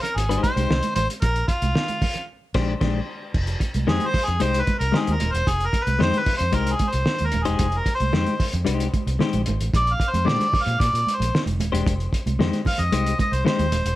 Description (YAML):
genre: funk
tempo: 113 BPM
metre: 4/4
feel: straight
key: F dorian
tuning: A4 = 440 Hz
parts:
  - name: mellow harmonica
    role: melody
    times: 0.0-14.0 s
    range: F4 to F5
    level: -24 LUFS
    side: equal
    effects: none
  - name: cloth-damped thuddy drum kit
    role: drums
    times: 0.0-14.0 s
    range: crash cymbal, hi-hat, kick drum, snare drum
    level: -25 LUFS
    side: equal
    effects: none
  - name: congas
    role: percussion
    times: 0.0-13.8 s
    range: none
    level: -31 LUFS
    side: right 6 dB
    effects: none
  - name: vintage muted fingered electric bass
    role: bass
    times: 0.2-14.0 s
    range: Eb1 to Bb2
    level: -24 LUFS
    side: equal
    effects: none
  - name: clean electric guitar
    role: accompaniment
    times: 0.3-13.7 s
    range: Ab3 to C5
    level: -27 LUFS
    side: left 6 dB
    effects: spring reverb
room: little or no reverb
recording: none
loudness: -20 LUFS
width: side -15 dB against mid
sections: 0.0-3.3 A section; 3.3-14.0 B section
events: band accent 2.3-3.3; harmonica solo 3.3-14.0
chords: 0.0 Fm9 (rootless); 1.2 Bb13; 3.3 Fm9; 9.7 Bb13; 11.9 Fm9